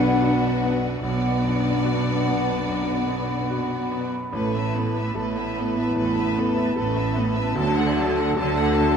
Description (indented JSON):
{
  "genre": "cinematic, emotional film score for orchestra",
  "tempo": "74 BPM",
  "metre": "4/4",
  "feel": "rubato",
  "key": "unclear",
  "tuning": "A4 = 442 Hz",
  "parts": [
    { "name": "warm symphonic violin section", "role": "melody", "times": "0.0-9.0 s", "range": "B4 to A5", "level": "-32 LUFS", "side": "left 6 dB", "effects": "none" },
    { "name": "clear studio violin section", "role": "second line", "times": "0.0-9.0 s", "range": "F#4 to B4", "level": "-36 LUFS", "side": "left 4 dB", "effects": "none" },
    { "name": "flute section", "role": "second line", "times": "0.0-9.0 s", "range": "F#5 to A5", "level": "-32 LUFS", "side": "left 1 dB", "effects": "none" },
    { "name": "mellow clarinet", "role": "second line", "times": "0.0-9.0 s", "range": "D4 to F#4", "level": "-34 LUFS", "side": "left 2 dB", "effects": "none" },
    { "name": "mellow cor anglais", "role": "second line", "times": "0.0-9.0 s", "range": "A4 to B4", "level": "-33 LUFS", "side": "right 3 dB", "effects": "none" },
    { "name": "bright grand piano", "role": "accompaniment", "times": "0.0-9.0 s", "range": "A1 to A4", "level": "-29 LUFS", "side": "left 2 dB", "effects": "none" },
    { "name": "warm symphonic viola section", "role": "accompaniment", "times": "0.0-9.0 s", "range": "F#3 to D4", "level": "-29 LUFS", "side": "right 2 dB", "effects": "none" },
    { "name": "mellow French horn section", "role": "sustained chords", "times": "0.0-9.0 s", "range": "A3 to F#4", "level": "-28 LUFS", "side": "left 4 dB", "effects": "none" },
    { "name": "clear symphonic double bass section", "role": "bass", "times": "0.0-9.0 s", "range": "A1 to D2", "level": "-29 LUFS", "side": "right 4 dB", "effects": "none" },
    { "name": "rich symphonic cello section", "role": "bass", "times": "0.0-9.0 s", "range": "A2 to D3", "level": "-28 LUFS", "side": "right 3 dB", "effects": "none" }
  ],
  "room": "moderate scoring stage reverb, RT60 1.6 s",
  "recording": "none",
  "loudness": "-21 LUFS",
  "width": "side -7 dB against mid",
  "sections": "0.0-9.0 A section",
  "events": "none",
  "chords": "0.0 Bm; 4.3 Asus2; 7.6 D"
}